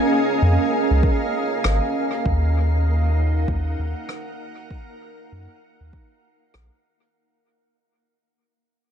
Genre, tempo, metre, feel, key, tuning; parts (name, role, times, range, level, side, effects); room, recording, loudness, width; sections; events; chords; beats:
ambient dub; 98 BPM; 4/4; swing 58% on 16ths; A4 = 440 Hz
soft additive organ-like pad; sustained chords; 0.0-7.2 s; Db4 to Gb5; -23 LUFS; right 2 dB; ensemble chorus, built-in reverb
wind-like tuned noise texture; texture; 0.0-7.2 s; Bb3 to Bb4; -30 LUFS; equal; built-in reverb
soft dub sub bass; bass; 0.4-6.7 s; Ab1 to Gb2; -19 LUFS; equal
electronic kick drum; drums; 1.0-6.1 s; -23 LUFS; equal
rim click; drums; 1.6-6.7 s; -28 LUFS; left 2 dB; dub echo
studio ambience; echo-heavy mix, nothing above 10.4 kHz; -18 LUFS; side -8 dB against mid
0.0-7.2 A section
fade-out 0.0-7.2; filter sweep on sub bass 0.0-7.2
0.0 Db; 2.3 Ebm7
0.42 1.03 1.64 | 2.25 2.87 3.48 4.09 | 4.70 5.32 5.93 6.54